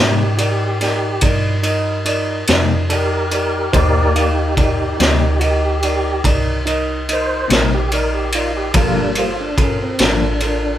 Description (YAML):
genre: slow blues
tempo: 48 BPM (dotted quarters)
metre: 12/8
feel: straight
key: unclear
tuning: A4 = 440 Hz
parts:
  - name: mellow electric guitar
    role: accompaniment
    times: 0.0-10.3 s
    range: G2 to Eb4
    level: -23 LUFS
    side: left 4 dB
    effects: tremolo
  - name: warm grand piano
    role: accompaniment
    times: 0.0-10.7 s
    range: Eb4 to F5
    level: -22 LUFS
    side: right 1 dB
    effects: none
  - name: tonewheel organ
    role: sustained chords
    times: 0.0-10.8 s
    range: G3 to D5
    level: -21 LUFS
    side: equal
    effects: slow rotary speaker, chorus vibrato
  - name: woody FM bass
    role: bass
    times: 0.0-10.8 s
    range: G1 to Ab2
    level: -20 LUFS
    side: equal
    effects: none
  - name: raw garage drum kit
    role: drums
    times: 0.4-10.6 s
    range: kick drum, ride cymbal, snare drum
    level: -18 LUFS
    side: equal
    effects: none
room: light reverb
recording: band playing live in one room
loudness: -14 LUFS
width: side -12 dB against mid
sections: 0.0-10.8 A section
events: tonewheel organ solo 0.0-10.8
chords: 0.0 Cm7; 8.7 Gm7